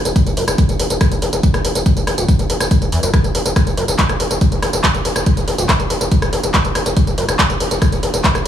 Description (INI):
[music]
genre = driving peak-time techno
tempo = 141 BPM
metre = 4/4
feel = straight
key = unclear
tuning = A4 = 441 Hz
[part]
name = gritty driven synth bass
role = bass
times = 0.1-8.5 s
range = D1 to E2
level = -19 LUFS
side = left 1 dB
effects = sidechain pumping
[part]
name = techno drum kit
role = drums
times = 0.1-8.5 s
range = handclaps, hi-hat, rim click, tambourine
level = -19 LUFS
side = equal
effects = none
[part]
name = electronic kick drum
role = drums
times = 0.2-8.3 s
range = none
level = -15 LUFS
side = equal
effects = none
[sound]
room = little or no reverb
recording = studio reverb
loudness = -13 LUFS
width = side -10 dB against mid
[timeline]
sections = 0.0-8.5 A section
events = none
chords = none